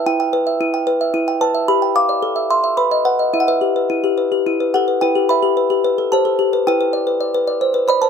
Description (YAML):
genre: classical, lullaby for music box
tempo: 110 BPM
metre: 3/4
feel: straight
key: E minor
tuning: A4 = 440 Hz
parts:
  - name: music box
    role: solo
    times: 0.0-8.1 s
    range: E4 to D6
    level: -14 LUFS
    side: equal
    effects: none
room: light reverb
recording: close, detailed microphones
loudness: -15 LUFS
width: side -6 dB against mid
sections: 0.0-5.0 A section; 5.0-8.1 A section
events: none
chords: 0.0 Em; 1.7 G7; 2.2 Am; 2.8 B; 3.3 Em; 6.7 G/E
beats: | 0.05 0.59 1.14 | 1.68 2.23 2.78 | 3.33 3.90 4.46 | 5.01 5.57 6.11 | 6.66 7.20 7.75